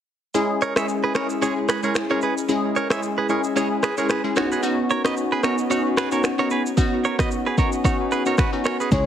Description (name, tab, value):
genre	afrobeats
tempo	112 BPM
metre	4/4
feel	swing 55% on 16ths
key	C# dorian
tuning	A4 = 438 Hz
part	glassy wavetable pluck	accompaniment	0.3-9.1 s	G#3 to G#4	-22 LUFS	left 1 dB	chorus
part	afro-pop drum kit	drums	0.3-9.1 s	finger snaps, kick drum, rim click, shaker	-24 LUFS	equal	vintage 12-bit sampler grit
part	direct-recorded clean electric guitar	riff	0.6-8.9 s	F#4 to E5	-25 LUFS	right 5 dB	tape echo
part	soft octave-layered synth lead	melody	8.9-9.1 s	C#5	-22 LUFS	left 2 dB	chorus, tremolo
part	sustaining fretless electric bass	bass	8.9-9.1 s	C#2	-21 LUFS	equal	wide subtle chorus
part	congas	percussion	8.9-9.1 s	none	-30 LUFS	equal	none
room	moderate digital room reverb, RT60 1.1 s, digital ambience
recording	heavily compressed radio sound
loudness	-19 LUFS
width	side -9 dB against mid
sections	0.3-8.9 A section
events	none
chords	0.3 C#m; 4.4 Badd9